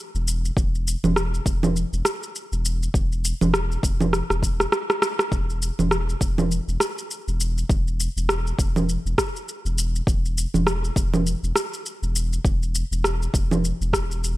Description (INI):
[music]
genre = organic downtempo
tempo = 101 BPM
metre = 4/4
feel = swing 58% on 16ths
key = unclear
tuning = A4 = 440 Hz
[part]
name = warm sub bass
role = bass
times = 0.1-14.4 s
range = E1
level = -24 LUFS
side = equal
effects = sidechain pumping
[part]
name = electronic shaker, congas and rim click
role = drums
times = 0.2-14.4 s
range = none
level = -23 LUFS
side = right 1 dB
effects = small room ambience
[part]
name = electronic kick drum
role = drums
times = 0.6-14.1 s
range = none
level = -23 LUFS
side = equal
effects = small room ambience
[sound]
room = little or no reverb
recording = none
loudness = -21 LUFS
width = side -17 dB against mid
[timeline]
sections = 0.0-14.4 A section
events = drum fill 4.1-5.3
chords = none